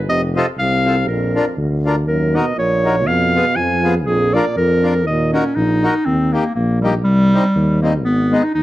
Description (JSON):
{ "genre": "alpine folk, alpine dance band", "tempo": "120 BPM", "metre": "2/4", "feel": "swing 54% on 8ths", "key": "Eb minor", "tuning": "A4 = 440 Hz", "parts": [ { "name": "mellow tuba", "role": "bass", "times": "0.0-8.6 s", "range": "F1 to F2", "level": "-19 LUFS", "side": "equal", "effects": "none" }, { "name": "clear clarinet", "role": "melody", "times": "0.1-8.6 s", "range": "G3 to Ab5", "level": "-17 LUFS", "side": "equal", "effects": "analog delay" }, { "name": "mellow euphonium", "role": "second line", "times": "0.1-5.5 s", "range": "F2 to F3", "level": "-22 LUFS", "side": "right 3 dB", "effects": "analog delay" }, { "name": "accordion", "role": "accompaniment", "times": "0.4-8.4 s", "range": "G3 to Bb4", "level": "-21 LUFS", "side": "left 2 dB", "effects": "plate reverb" } ], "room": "moderate studio reverb, RT60 0.5 s", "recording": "dark, warm production", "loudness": "-14 LUFS", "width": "side -15 dB against mid", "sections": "0.0-6.1 A section; 6.1-8.6 B section", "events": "none", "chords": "0.1 F; 1.1 Bb; 2.1 Ebm7; 3.1 Fdim; 4.1 Bb; 5.1 Ebm; 6.1 Eb; 7.1 Cm; 8.1 Abm" }